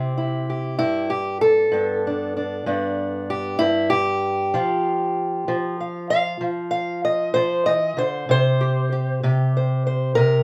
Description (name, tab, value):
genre	acoustic country blues, solo or duo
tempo	64 BPM (dotted quarters)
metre	12/8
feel	straight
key	C major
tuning	A4 = 438 Hz
part	fingerpicked steel-string acoustic guitar	solo	0.0-10.4 s	G2 to F5	-22 LUFS	equal	none
room	moderate small room reverb, RT60 0.5 s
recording	none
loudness	-22 LUFS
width	mono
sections	0.0-10.4 A section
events	steel-string acoustic guitar solo 0.0-10.4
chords	0.0 C; 0.8 G; 4.5 Dm7 (rootless); 8.3 C5